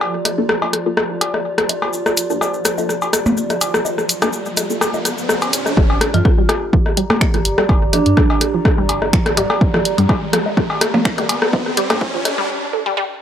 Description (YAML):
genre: minimal techno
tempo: 125 BPM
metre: 4/4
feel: swing 54% on 16ths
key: G minor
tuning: A4 = 440 Hz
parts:
  - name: rubbery square bass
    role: bass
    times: 0.0-12.0 s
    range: D1 to G2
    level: -24 LUFS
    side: equal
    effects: sidechain pumping, high-pass filter
  - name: electronic cowbell, rim click, woodblock and percussion blips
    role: percussion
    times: 0.0-12.4 s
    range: none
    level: -19 LUFS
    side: left 2 dB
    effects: tape echo
  - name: swarming drone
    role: texture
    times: 0.0-5.8 s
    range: F3 to F4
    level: -28 LUFS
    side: right 2 dB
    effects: built-in reverb, sidechain pumping
  - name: warbly tape-like pad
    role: texture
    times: 0.0-12.5 s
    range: G4 to Bb5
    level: -25 LUFS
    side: right 2 dB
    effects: chorus, built-in reverb, sidechain pumping
  - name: punchy analog drum machine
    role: drums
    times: 0.3-12.4 s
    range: finger snaps, hi-hat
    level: -19 LUFS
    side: equal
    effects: none
  - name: filtered dub chord stab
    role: stabs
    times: 0.4-4.8 s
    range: Bb3 to A4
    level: -24 LUFS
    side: left 3 dB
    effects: phaser, wide subtle chorus, tape echo
  - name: cabasa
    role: percussion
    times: 1.9-5.8 s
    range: none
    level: -26 LUFS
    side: left 3 dB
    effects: none
  - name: riser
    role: sound effects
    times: 3.6-12.5 s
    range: none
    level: -26 LUFS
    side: equal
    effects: none
  - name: resonant blip pluck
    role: riff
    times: 5.8-13.0 s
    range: F3 to A3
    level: -22 LUFS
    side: equal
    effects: phaser, sidechain pumping, analog delay
  - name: electronic kick drum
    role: drums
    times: 5.8-12.1 s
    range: none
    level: -16 LUFS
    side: equal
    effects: none
  - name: marimba with medium hard mallets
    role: melody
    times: 6.1-8.1 s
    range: D4 to F4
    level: -22 LUFS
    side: right 3 dB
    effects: tape echo
room: light reverb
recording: dry, gritty hardware recording, high-pass filter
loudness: -14 LUFS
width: side -9 dB against mid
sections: 0.0-5.8 A section; 5.8-13.2 B section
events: riser 3.6-5.8, 5.8-12.5; build-up 5.8-13.2; filter sweep on synth pluck 5.8-13.2; filter sweep 5.8-13.2; break 12.5-13.2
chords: 0.0 Gm7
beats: | 0.01 0.49 0.97 1.45 | 1.93 2.41 2.89 3.37 | 3.85 4.33 4.81 5.29 | 5.77 6.25 6.73 7.21 | 7.69 8.17 8.65 9.13 | 9.61 10.09 10.57 11.05 | 11.53 12.01 12.49 12.97